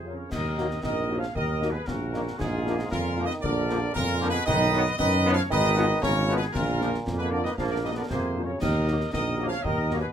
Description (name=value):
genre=military-style march for wind band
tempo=116 BPM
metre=2/4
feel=straight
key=Eb minor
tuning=A4 = 440 Hz
part: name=clear trumpet section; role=melody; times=0.0-10.1 s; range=Ab4 to F5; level=-31 LUFS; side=equal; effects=none
part: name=clear euphonium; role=second line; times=0.0-10.1 s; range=Ab2 to F3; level=-31 LUFS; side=right 3 dB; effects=none
part: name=flute section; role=second line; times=0.0-10.1 s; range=F4 to D5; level=-33 LUFS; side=left 1 dB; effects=none
part: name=warm trombone section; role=sustained chords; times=0.0-10.0 s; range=F3 to Cb4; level=-33 LUFS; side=right 1 dB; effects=none
part: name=mellow tuba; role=bass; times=0.0-10.0 s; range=Ab1 to F#2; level=-28 LUFS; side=right 1 dB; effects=none
part: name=mellow French horn section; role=accompaniment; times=0.1-10.0 s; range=F#3 to Db5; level=-33 LUFS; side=left 6 dB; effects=none
part: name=concert snare drum, clash cymbals and concert bass drum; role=drums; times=0.3-10.0 s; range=none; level=-35 LUFS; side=left 2 dB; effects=none
room=moderate studio ambience, RT60 0.5 s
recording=none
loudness=-23 LUFS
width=side -9 dB against mid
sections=0.3-10.1 A section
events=none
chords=0.3 Ebm; 2.4 Bb7; 4.5 B; 5.5 Fm7b5/Ab; 6.5 Bb; 8.6 Ebm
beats=| 0.32 0.84 | 1.36 1.88 | 2.40 2.92 | 3.43 3.95 | 4.47 4.99 | 5.51 6.03 | 6.54 7.06 | 7.58 8.10 | 8.62 9.13 | 9.65